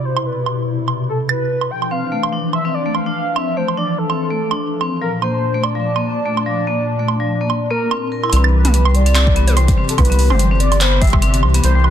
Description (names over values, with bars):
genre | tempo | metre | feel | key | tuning
IDM | 145 BPM | 4/4 | swing 56% on 16ths | C major | A4 = 439 Hz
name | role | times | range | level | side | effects
warm velvety synth lead | melody | 0.0-11.9 s | A4 to G5 | -22 LUFS | left 1 dB | chorus, digital delay
hollow soft pad | sustained chords | 0.0-11.9 s | Bb2 to A5 | -22 LUFS | left 1 dB | ensemble chorus
electro analog drum machine | drums | 0.2-11.9 s | handclaps, hi-hat, toms, woodblock | -21 LUFS | right 5 dB | overdrive
vibraphone with hard mallets | arpeggios | 1.9-11.8 s | F3 to Bb4 | -23 LUFS | left 3 dB | tape echo
round analog bass | bass | 8.3-11.9 s | G1 to C2 | -13 LUFS | equal | none
electronic kick drum | drums | 9.3-11.2 s | none | -16 LUFS | equal | none
room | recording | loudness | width
little or no reverb | dense, heavily limited modern master | -14 LUFS | side -10 dB against mid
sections
0.0-8.3 A section; 8.3-11.9 B section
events
filter sweep on analog synth pad 0.0-8.3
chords
0.0 Cmaj7; 1.7 Dmadd9; 5.0 Bbmaj7; 8.3 Cmaj7